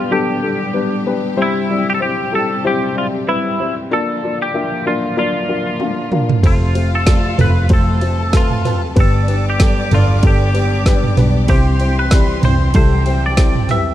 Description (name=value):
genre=piano-driven pop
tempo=95 BPM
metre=4/4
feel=swing 56% on 16ths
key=C major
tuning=A4 = 441 Hz
part: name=twangy electric guitar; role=melody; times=0.0-13.9 s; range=E4 to E5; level=-21 LUFS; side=equal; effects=analog chorus
part: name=dark upright piano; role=accompaniment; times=0.0-13.9 s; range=G2 to F5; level=-20 LUFS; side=left 3 dB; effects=none
part: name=clear studio string section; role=sustained chords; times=0.0-13.9 s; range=C3 to G4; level=-27 LUFS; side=right 1 dB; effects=none
part: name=deep house drum kit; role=drums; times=5.8-13.9 s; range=kick drum, ride cymbal, snare drum, toms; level=-14 LUFS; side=right 1 dB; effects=none
part: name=warm studio violin section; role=second line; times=6.4-13.9 s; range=C4 to D6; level=-27 LUFS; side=left 1 dB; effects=none
part: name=vintage muted picked electric bass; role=bass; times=6.4-13.9 s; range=F1 to C2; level=-16 LUFS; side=equal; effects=none
room=digital ambience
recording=dark, warm production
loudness=-13 LUFS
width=side -12 dB against mid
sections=0.0-13.9 A section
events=drum fill 5.8-6.4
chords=0.0 G; 1.4 C; 3.9 Bb; 6.4 F; 9.0 G; 11.5 C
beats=0.12 0.75 | 1.38 2.01 2.65 3.28 | 3.91 4.54 5.17 5.80 | 6.43 7.07 7.70 8.33 | 8.96 9.60 10.23 10.86 | 11.49 12.12 12.75 13.38